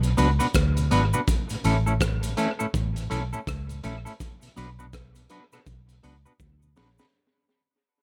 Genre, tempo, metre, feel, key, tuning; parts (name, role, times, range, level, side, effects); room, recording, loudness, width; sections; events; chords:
roots reggae; 82 BPM; 4/4; swing 60% on 16ths; A4 = 440 Hz
mellow tonewheel organ; accompaniment; 0.0-7.1 s; A2 to D4; -33 LUFS; equal; slow rotary speaker
vintage muted fingered electric bass; bass; 0.0-7.0 s; G#1 to D2; -28 LUFS; equal
crunchy breakbeat drum kit; drums; 0.0-7.1 s; hi-hat, kick drum, rim click, snare drum; -31 LUFS; equal; dub echo
cabasa; percussion; 0.0-7.1 s; -43 LUFS; equal
electric guitar at the edge of break-up; accompaniment; 0.2-7.0 s; A3 to B4; -31 LUFS; equal; dub echo
little or no reverb; -25 LUFS; mono
0.0-7.1 A section
fade-out 0.0-7.1; drum fill 6.4-7.1
0.0 Bm; 1.3 A; 4.2 Bm